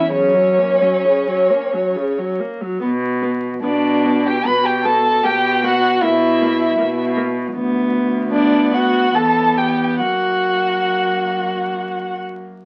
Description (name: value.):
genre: classical, slow romantic movement for string quartet.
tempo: 64-80 BPM.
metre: 3/4.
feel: rubato.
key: B minor.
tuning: A4 = 440 Hz.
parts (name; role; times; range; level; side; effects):
dark violin; melody; 0.0-12.2 s; C#5 to B5; -22 LUFS; equal; none.
dark violin; second line; 0.0-12.2 s; C#4 to B4; -21 LUFS; equal; none.
warm viola; accompaniment; 0.0-12.5 s; C#3 to C#4; -25 LUFS; equal; none.
warm cello; bass; 0.1-12.5 s; D2 to B2; -25 LUFS; equal; none.
room: moderate studio reverb, RT60 0.6 s.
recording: very old 78 rpm record, vinyl crackle.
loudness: -17 LUFS.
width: mono.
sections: 0.0-2.8 A section; 2.8-12.7 B section.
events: none.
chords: 0.1 F#; 2.8 Bm7; 5.2 F#7b9; 7.5 Bm/D; 9.1 Em; 10.0 F#.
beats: | 0.11 1.05 1.96 | 2.82 3.63 4.45 | 5.24 6.03 6.79 | 7.55 8.32 9.14 | 10.00 10.89 11.79.